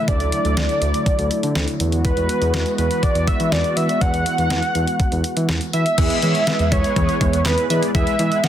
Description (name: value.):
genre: synth-pop.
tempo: 122 BPM.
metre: 4/4.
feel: straight.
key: unclear.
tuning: A4 = 437 Hz.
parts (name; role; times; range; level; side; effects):
wide unison lead; melody; 0.0-8.5 s; B4 to F#5; -22 LUFS; equal; digital delay.
warm analog pad; sustained chords; 0.0-5.9 s; D3 to F#4; -26 LUFS; equal; chorus.
smooth synth bass; bass; 0.1-8.3 s; D2 to E3; -22 LUFS; equal; none.
clean 12-bit digital drum machine; drums; 0.1-8.5 s; crash cymbal, handclaps, hi-hat, kick drum, snare drum; -22 LUFS; equal; none.
mellow synth brass; accompaniment; 6.0-8.5 s; G#3 to D5; -22 LUFS; right 1 dB; chorus.
resonant blip pluck; arpeggios; 6.0-8.5 s; E3 to E5; -28 LUFS; left 1 dB; phaser, digital delay.
room: light reverb.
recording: dense, heavily limited modern master.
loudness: -16 LUFS.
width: side -10 dB against mid.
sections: 0.0-6.0 A section; 6.0-8.5 B section.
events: none.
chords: 0.1 Dadd9; 1.8 Eadd9; 6.0 E.